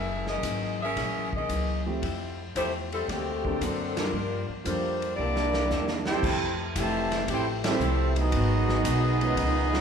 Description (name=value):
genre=jazz, big band swing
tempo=114 BPM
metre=4/4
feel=swing 69% on 8ths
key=unclear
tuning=A4 = 441 Hz
part: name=mellow saxophone section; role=melody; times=0.0-6.0 s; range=D3 to Fb5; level=-30 LUFS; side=left 2 dB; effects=none
part: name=vintage hollow-body jazz guitar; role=accompaniment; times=0.0-9.8 s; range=Gb2 to A4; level=-36 LUFS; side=left 6 dB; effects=none
part: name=upright bass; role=bass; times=0.0-9.8 s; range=F1 to G2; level=-30 LUFS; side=equal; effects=none
part: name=swinging big-band drum kit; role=drums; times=0.3-9.8 s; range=crash cymbal, hi-hat, kick drum, ride cymbal, snare drum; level=-34 LUFS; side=equal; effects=none
part: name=warm concert grand piano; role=accompaniment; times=1.9-9.8 s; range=F3 to Cb5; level=-34 LUFS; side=right 2 dB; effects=none
part: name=warm trombone section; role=second line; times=5.2-9.8 s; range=C3 to G4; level=-29 LUFS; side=right 4 dB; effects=none
part: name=warm trumpet section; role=melody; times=6.1-9.8 s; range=B3 to A5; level=-30 LUFS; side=left 1 dB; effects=none
part: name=bright trombone section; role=sustained chords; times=6.2-9.8 s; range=Eb3 to G4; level=-38 LUFS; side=left 2 dB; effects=none
room=moderate large studio reverb, RT60 1.2 s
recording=band playing live in one room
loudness=-25 LUFS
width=side -7 dB against mid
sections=0.0-6.2 A section; 6.2-9.8 B section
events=band accent 3.9, 7.5; drum fill 5.2-6.2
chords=0.0 Gb13; 2.0 Fmaj9; 3.1 D7b13; 4.1 Gm7; 5.2 C13; 6.2 Fmaj9; 8.3 Abm7